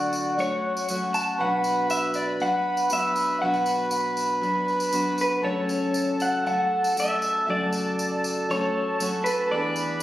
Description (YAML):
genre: acoustic folk duo or small band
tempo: 118 BPM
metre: 4/4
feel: straight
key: unclear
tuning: A4 = 439 Hz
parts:
  - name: electric guitar through a small old amp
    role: melody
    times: 0.0-10.0 s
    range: B4 to A5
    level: -25 LUFS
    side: equal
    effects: tremolo
  - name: mellow accordion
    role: second line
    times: 0.0-10.0 s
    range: F#4 to B4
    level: -27 LUFS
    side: right 1 dB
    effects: none
  - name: picked steel-string acoustic guitar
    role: accompaniment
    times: 0.0-10.0 s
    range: F#2 to G#4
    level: -29 LUFS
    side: left 1 dB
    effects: none
  - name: tambourine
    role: percussion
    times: 0.1-10.0 s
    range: none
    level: -35 LUFS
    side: equal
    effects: none
room: moderate studio reverb, RT60 0.6 s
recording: recorded on a phone in the room, studio reverb, compression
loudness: -22 LUFS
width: side -14 dB against mid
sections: 0.0-10.0 A section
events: none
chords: 0.0 Dmaj7; 1.4 Bm; 5.4 F#m; 9.5 E7